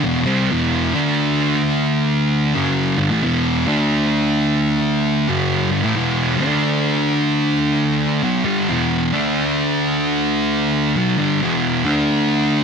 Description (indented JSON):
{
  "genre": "metal",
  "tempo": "88 BPM",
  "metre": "4/4",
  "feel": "swing 64% on 8ths",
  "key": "unclear",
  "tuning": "A4 = 441 Hz",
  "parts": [
    { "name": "thick fuzz guitar", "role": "solo", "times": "0.0-12.6 s", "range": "E2 to D4", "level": "-16 LUFS", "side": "equal", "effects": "distortion" }
  ],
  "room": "digital ambience",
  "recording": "none",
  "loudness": "-16 LUFS",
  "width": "side -6 dB against mid",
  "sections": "0.0-6.0 A section; 6.0-12.6 B section",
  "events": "none",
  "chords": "0.0 Em; 0.8 D5; 2.5 E5; 3.6 D5; 5.3 Em; 6.0 E5; 6.3 D5; 8.2 Em; 9.0 D5; 10.9 Em; 11.8 D5",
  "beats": "| 0.51 1.19 1.87 2.55 | 3.23 3.91 4.59 5.28 | 5.96 6.64 7.33 8.01 | 8.69 9.38 10.06 10.74 | 11.43 12.11"
}